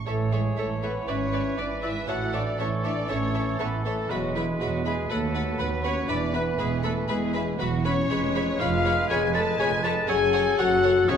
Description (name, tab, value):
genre	classical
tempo	120 BPM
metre	4/4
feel	straight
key	A major, F# minor from 8.1 s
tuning	A4 = 438 Hz
part	rich symphonic violin section	melody	0.0-11.2 s	E4 to A5	-35 LUFS	left 4 dB	none
part	clear clarinet	second line	0.1-11.2 s	E4 to A5	-34 LUFS	equal	none
part	mellow silver concert flute	second line	0.1-11.2 s	E5 to A6	-33 LUFS	left 2 dB	none
part	rich studio violin section	second line	0.1-11.2 s	C#5 to B5	-37 LUFS	left 2 dB	none
part	warm oboe	second line	0.1-11.2 s	G#4 to C#5	-35 LUFS	right 3 dB	none
part	rich studio viola section	accompaniment	0.1-11.2 s	G#4 to D5	-35 LUFS	right 2 dB	none
part	warm bassoon	accompaniment	0.1-11.2 s	E3 to G#3	-34 LUFS	right 3 dB	none
part	warm French horn section	sustained chords	0.1-11.2 s	E3 to A4	-28 LUFS	left 5 dB	none
part	rich studio double bass section	bass	0.1-11.2 s	E1 to D#2	-30 LUFS	right 4 dB	none
part	warm studio cello section	bass	0.1-11.2 s	D#2 to A2	-33 LUFS	right 4 dB	none
room	wet recital hall reverb, RT60 1.5 s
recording	none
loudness	-23 LUFS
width	side -8 dB against mid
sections	0.1-11.2 A section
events	none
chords	0.1 A; 1.1 E7/G#; 2.1 A; 4.1 E; 5.1 B7/D#; 6.1 E; 8.1 C#7/E#; 10.1 F#m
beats	| 0.07 0.57 1.08 1.58 | 2.09 2.59 3.09 3.60 | 4.10 4.60 5.10 5.60 | 6.09 6.59 7.09 7.59 | 8.10 8.60 9.10 9.59 | 10.09 10.58 11.08